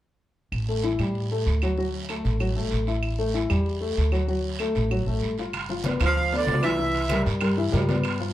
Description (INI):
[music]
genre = Afro-Cuban jazz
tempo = 191 BPM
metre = 4/4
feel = straight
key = G mixolydian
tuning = A4 = 442 Hz
[part]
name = upright bass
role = bass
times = 0.5-8.3 s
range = G1 to A2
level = -26 LUFS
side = equal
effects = none
[part]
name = claves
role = percussion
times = 0.5-8.2 s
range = none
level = -36 LUFS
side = right 5 dB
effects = none
[part]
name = guiro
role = percussion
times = 0.5-8.3 s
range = none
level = -38 LUFS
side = right 6 dB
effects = none
[part]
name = dark baby grand piano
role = accompaniment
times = 0.7-8.3 s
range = E3 to F5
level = -27 LUFS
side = left 2 dB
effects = none
[part]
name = congas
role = percussion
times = 5.5-8.3 s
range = none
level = -31 LUFS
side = left 1 dB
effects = none
[part]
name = timbales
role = percussion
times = 5.5-8.2 s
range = none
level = -32 LUFS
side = right 4 dB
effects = none
[part]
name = accordion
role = melody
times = 6.1-7.2 s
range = D5 to F5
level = -26 LUFS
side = right 2 dB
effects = plate reverb
[part]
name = breathy tenor saxophone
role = second line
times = 6.1-7.2 s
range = D3 to F3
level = -30 LUFS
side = right 3 dB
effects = none
[sound]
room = wet club reverb, RT60 0.7 s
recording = heard from further back in the room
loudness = -22 LUFS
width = side -13 dB against mid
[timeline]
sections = 0.5-5.5 A section; 5.5-8.3 B section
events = none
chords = 0.5 A5; 1.8 Dadd9; 3.0 A5; 4.3 D; 5.5 G7; 6.8 C7